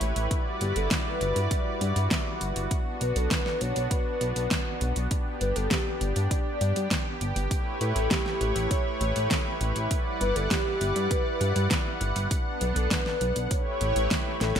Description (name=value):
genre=synthwave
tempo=100 BPM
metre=4/4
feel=straight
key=unclear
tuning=A4 = 439 Hz
part: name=lush unison pad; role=sustained chords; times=0.0-14.6 s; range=G3 to F#5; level=-31 LUFS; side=right 1 dB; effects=chorus, sidechain pumping
part: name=chorused synth bass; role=bass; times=0.0-14.6 s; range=G1 to A2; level=-27 LUFS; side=equal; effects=none
part: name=pop drum kit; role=drums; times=0.0-14.6 s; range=hi-hat, snare drum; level=-30 LUFS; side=equal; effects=gated reverb
part: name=electronic kick drum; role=drums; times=0.3-14.2 s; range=none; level=-29 LUFS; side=equal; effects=none
part: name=warm velvety synth lead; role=melody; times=0.6-14.6 s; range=G4 to D5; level=-32 LUFS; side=left 1 dB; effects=chorus, digital delay
room=light reverb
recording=bright 1980s-style digital production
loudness=-24 LUFS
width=side -8 dB against mid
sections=0.0-14.6 A section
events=drum fill 14.4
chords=0.3 Em7/G; 2.7 Bm; 5.1 G; 7.5 A7; 9.9 Em7/G; 12.3 Bm; 13.5 A7